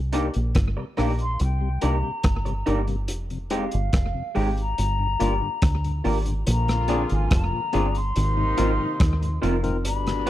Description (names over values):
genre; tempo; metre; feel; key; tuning
lovers rock reggae; 71 BPM; 4/4; straight; C minor; A4 = 438 Hz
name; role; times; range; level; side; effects
deep dub fingered electric bass; bass; 0.0-10.3 s; F1 to Eb2; -24 LUFS; equal; none
barky tine electric piano; accompaniment; 0.1-10.3 s; Ab3 to B4; -30 LUFS; left 4 dB; overdrive, slapback echo
mellow tonewheel organ; accompaniment; 0.1-10.3 s; F2 to Ab4; -32 LUFS; left 5 dB; slow rotary speaker
electric guitar through a small old amp; stabs; 0.1-10.3 s; Ab3 to D5; -29 LUFS; right 6 dB; lush chorus
crunchy breakbeat drum kit; drums; 0.1-10.3 s; hi-hat, kick drum, rim click; -24 LUFS; equal; slapback echo
mellow hollow concert flute; melody; 1.0-10.3 s; F5 to C6; -30 LUFS; left 2 dB; tape echo
warm horn section; second line; 6.5-10.3 s; B2 to F4; -31 LUFS; left 3 dB; none
room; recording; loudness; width
small room ambience; dry, close 1970s-style studio recording; -21 LUFS; side -14 dB against mid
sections
0.0-6.5 A section; 6.5-10.3 B section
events
none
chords
0.0 Cm9; 3.1 Fm9; 4.8 Gm7; 6.5 Bb7; 8.2 Ab69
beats
0.55 1.40 2.24 | 3.09 3.93 4.78 5.62 | 6.47 7.31 8.15 9.00 | 9.84